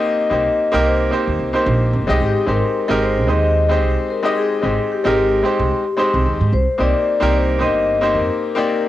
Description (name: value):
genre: sunset chillout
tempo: 111 BPM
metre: 4/4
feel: swing 56% on 16ths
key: C minor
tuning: A4 = 439 Hz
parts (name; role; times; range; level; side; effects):
- vibraphone with medium mallets; melody; 0.0-8.9 s; G4 to Eb5; -20 LUFS; left 4 dB; cassette tape, tape echo
- bright grand piano; accompaniment; 0.0-8.9 s; Ab3 to Eb5; -19 LUFS; right 1 dB; auto-pan
- upright bass; bass; 0.3-8.3 s; G1 to Ab2; -19 LUFS; right 2 dB; none
room: moderate spring reverb, RT60 1.1 s, small room reverb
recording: home recording on cassette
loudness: -15 LUFS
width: side -14 dB against mid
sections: 0.0-8.9 A section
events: none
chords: 0.0 Cm7; 2.2 Abmaj7; 6.5 Cm7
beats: | 0.04 0.58 1.12 1.66 | 2.20 2.74 3.28 3.82 | 4.36 4.90 5.45 5.99 | 6.53 7.07 7.61 8.15 | 8.69